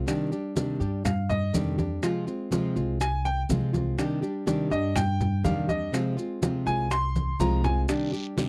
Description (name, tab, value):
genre	latin, Cuban son and guajira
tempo	123 BPM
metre	4/4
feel	straight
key	C minor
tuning	A4 = 440 Hz
part	nylon-string guitar	accompaniment	0.0-8.5 s	C3 to G4	-30 LUFS	equal	none
part	bongos	percussion	0.1-8.5 s	none	-37 LUFS	equal	none
part	congas	percussion	0.1-8.5 s	none	-33 LUFS	equal	none
part	maracas	percussion	0.1-8.5 s	none	-44 LUFS	equal	none
part	upright bass	bass	0.8-7.8 s	C2 to G2	-30 LUFS	equal	none
part	bright baby grand piano	arpeggios	1.1-7.8 s	Eb5 to C6	-32 LUFS	equal	none
part	guiro	percussion	7.9-8.5 s	none	-42 LUFS	equal	none
room	little or no reverb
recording	dry, close 1970s-style studio recording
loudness	-27 LUFS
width	mono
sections	0.0-8.5 A section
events	grand piano solo 0.0-8.5; drum fill 7.2-7.9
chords	0.1 Cmadd9; 2.0 Fm; 4.0 Cmadd9; 5.9 Fm; 7.9 Cmadd9